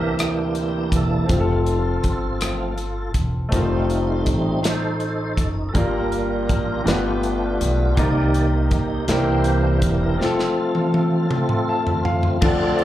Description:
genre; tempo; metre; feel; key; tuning
slow gospel; 54 BPM (dotted quarters); 6/8; straight; unclear; A4 = 440 Hz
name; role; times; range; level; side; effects
clear baby grand piano; accompaniment; 0.0-12.8 s; G2 to A5; -24 LUFS; left 1 dB; slapback echo
tonewheel organ; sustained chords; 0.0-12.8 s; Eb3 to E5; -23 LUFS; right 1 dB; slow rotary speaker, overdrive, chorus vibrato
upright bass; bass; 0.0-12.8 s; E1 to D2; -23 LUFS; equal; none
modern studio drum kit; drums; 0.2-12.8 s; crash cymbal, hi-hat, kick drum, ride cymbal, rim click, snare drum, toms; -23 LUFS; equal; none
room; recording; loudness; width
light reverb; live gig heard through the venue's PA, club reverb; -18 LUFS; side -13 dB against mid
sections
0.0-12.4 A section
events
tonewheel organ solo 0.0-12.4; drum fill 10.2-12.4; grand piano fill 11.3-12.4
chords
0.0 C7; 1.3 F; 3.5 F7; 5.8 Gm7; 6.9 G7; 8.0 Cm7; 9.1 C7; 10.2 F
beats
0.19 | 1.30 2.41 | 3.53 4.64 | 5.75 6.87 | 7.98 9.09 | 10.20 11.31 | 12.43

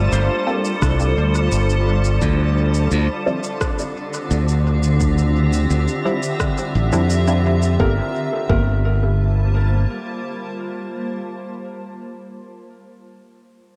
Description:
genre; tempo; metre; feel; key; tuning
ambient dub; 86 BPM; 4/4; straight; G dorian; A4 = 442 Hz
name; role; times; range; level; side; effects
granular cloud pad; sustained chords; 0.0-11.3 s; D3 to A5; -26 LUFS; equal; built-in reverb, vintage 12-bit sampler grit
concert harp; arpeggios; 0.0-3.1, 7.8-11.6 s; A3 to C5; -34 LUFS; equal; delay
modern bright fingered electric bass; bass; 0.0-9.8 s; G1 to F2; -19 LUFS; equal; tube saturation
wind-like tuned noise texture; texture; 0.0-7.8 s; D4 to D5; -34 LUFS; equal; built-in reverb
electronic shaker and rim click; drums; 0.1-7.8 s; none; -33 LUFS; equal; dub echo
filtered dub chord stab; stabs; 0.5-11.6 s; F3 to A4; -28 LUFS; equal; phaser, dub echo
electronic kick drum; drums; 0.8-8.7 s; none; -25 LUFS; equal; overdrive
room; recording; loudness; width
light reverb; none; -19 LUFS; mono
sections
0.0-7.8 A section; 7.8-10.6 B section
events
none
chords
0.0 G9sus4; 2.2 Dm11; 7.8 Gm11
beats
0.12 0.82 1.52 | 2.21 2.91 3.61 4.31 | 5.01 5.70 6.40 7.10 | 7.80 8.49 9.19 9.89

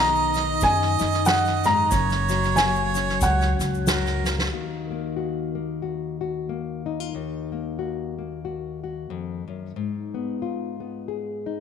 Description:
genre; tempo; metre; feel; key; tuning
acoustic folk duo or small band; 92 BPM; 4/4; swing 58% on 8ths; Eb minor; A4 = 442 Hz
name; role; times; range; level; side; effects
felt-muted upright piano; melody; 0.0-4.2 s; F#5 to Bb5; -23 LUFS; equal; none
clear harmonica; second line; 0.0-4.5 s; Bb4 to D#5; -27 LUFS; right 9 dB; none
nylon-string guitar; accompaniment; 0.0-11.6 s; Eb2 to Ab4; -28 LUFS; left 7 dB; none
upright bass; bass; 0.0-4.5 s; Gb1 to F#2; -26 LUFS; equal; none
tube shaker; percussion; 0.2-4.5 s; none; -36 LUFS; left 16 dB; none
soft-mallet drum kit; drums; 0.4-4.5 s; kick drum, snare drum; -27 LUFS; right 1 dB; none
room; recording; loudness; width
moderate echo chamber reverb, RT60 2.3 s; 1960s-style stereo with parts hard left and right; -22 LUFS; side -7 dB against mid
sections
0.0-4.5 A section; 4.5-11.6 B section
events
drum fill 4.2-4.5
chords
0.0 B; 1.9 Gb; 4.5 Ebm; 9.7 Abm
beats
0.62 1.27 | 1.92 2.57 3.22 3.87 | 4.53 5.18 5.83 6.48 | 7.13 7.79 8.44 9.10 | 9.75 10.40 11.05

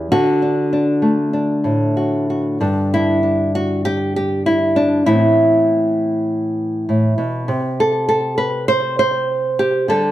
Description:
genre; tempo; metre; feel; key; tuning
folk, solo fingerstyle acoustic guitar; 99 BPM; 4/4; rubato; G major; A4 = 440 Hz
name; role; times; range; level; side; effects
nylon-string guitar; solo; 0.0-10.1 s; E2 to C5; -15 LUFS; equal; slapback echo
room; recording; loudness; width
light reverb; none; -15 LUFS; side -13 dB against mid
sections
0.0-2.6 A section; 2.6-10.1 B section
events
none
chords
0.1 D; 2.6 G5; 5.1 Amadd9; 7.5 N.C.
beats
| 0.12 0.72 1.34 1.98 | 2.62 3.23 3.85 4.46 | 5.06 5.67 6.28 6.88 | 7.47 8.07 8.68 9.28 | 9.89

